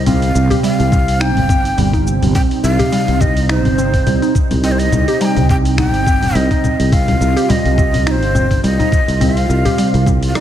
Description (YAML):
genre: organic downtempo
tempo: 105 BPM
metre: 4/4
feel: swing 55% on 16ths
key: C minor pentatonic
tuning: A4 = 441 Hz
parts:
  - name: breathy ney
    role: melody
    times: 0.0-10.4 s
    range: C5 to Bb5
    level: -20 LUFS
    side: left 1 dB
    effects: tape echo
  - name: warm analog pad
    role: sustained chords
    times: 0.0-10.4 s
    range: C3 to G4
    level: -20 LUFS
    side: right 3 dB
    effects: lush chorus, sidechain pumping
  - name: sustaining fretless electric bass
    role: bass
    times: 0.0-10.3 s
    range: G1 to C2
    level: -16 LUFS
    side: equal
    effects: tube saturation
  - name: mallet-like synth pluck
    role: arpeggios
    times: 0.1-10.4 s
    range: G3 to G4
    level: -20 LUFS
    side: right 1 dB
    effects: chorus, tape echo
  - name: dusty soul sampler-style drum kit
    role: drums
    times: 0.1-10.4 s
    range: congas, finger snaps, hi-hat, rim click, shaker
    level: -20 LUFS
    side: left 2 dB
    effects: none
  - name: electronic kick drum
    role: drums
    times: 0.9-10.2 s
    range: none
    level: -16 LUFS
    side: equal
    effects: none
room: moderate plate reverb, RT60 2.0 s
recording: dreamy mix soaked in reverb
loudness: -12 LUFS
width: side -11 dB against mid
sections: 0.0-10.4 A section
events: none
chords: 0.0 Cm